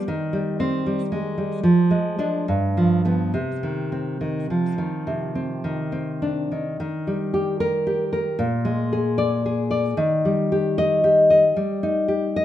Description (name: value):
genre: romantic piece for solo classical guitar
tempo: 68-77 BPM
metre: 4/4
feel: rubato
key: C minor, Eb major from 6.8 s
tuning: A4 = 442 Hz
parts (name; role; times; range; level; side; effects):
- nylon-string guitar; solo; 0.0-12.4 s; G2 to Eb5; -20 LUFS; equal; none
room: moderate recital hall reverb, RT60 1.5 s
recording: minimal, uncompressed stereo recording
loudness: -20 LUFS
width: side -12 dB against mid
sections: 0.0-6.8 A section; 6.8-12.4 B section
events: none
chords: 0.1 Cm/Eb; 1.6 Ddim/F; 2.5 G7; 3.3 Cm; 6.8 Eb; 8.4 Bb7; 10.0 Eb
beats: | 0.07 0.85 1.64 2.48 | 3.35 4.22 5.08 5.94 | 6.80 7.61 8.41 9.21 | 9.99 10.79 11.57 12.36